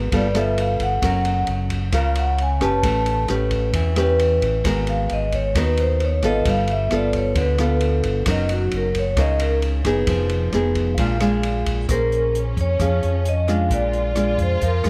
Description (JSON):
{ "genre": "bossa nova", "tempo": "133 BPM", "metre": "4/4", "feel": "straight", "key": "Bb minor from 11.9 s", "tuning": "A4 = 438 Hz", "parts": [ { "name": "nylon-string guitar", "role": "accompaniment", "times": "0.0-14.9 s", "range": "Bb2 to C5", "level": "-25 LUFS", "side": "equal", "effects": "none" }, { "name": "fingered electric bass", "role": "bass", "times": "0.0-14.9 s", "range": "F1 to F2", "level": "-24 LUFS", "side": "equal", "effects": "none" }, { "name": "open jazz drum kit", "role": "drums", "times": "0.1-14.9 s", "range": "hi-hat, kick drum, ride cymbal, rim click", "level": "-30 LUFS", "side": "equal", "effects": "none" }, { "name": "vibraphone with medium mallets", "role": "melody", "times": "0.2-14.9 s", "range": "Gb4 to A5", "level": "-26 LUFS", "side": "equal", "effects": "none" }, { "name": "warm symphonic violin section", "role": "second line", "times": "11.9-14.9 s", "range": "Db4 to F4", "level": "-35 LUFS", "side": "equal", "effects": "none" } ], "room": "little or no reverb", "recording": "close, detailed microphones", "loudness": "-20 LUFS", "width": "mono", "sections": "0.0-11.9 A section; 11.9-14.9 B section", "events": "vibraphone solo 0.0-11.9", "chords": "0.1 G9; 1.0 Gbmaj7; 2.8 A9; 4.7 Abm9; 6.5 G9; 8.3 Gb6; 10.1 Fm7b5; 11.0 Bb7; 11.9 Bbm9; 13.7 Bb7" }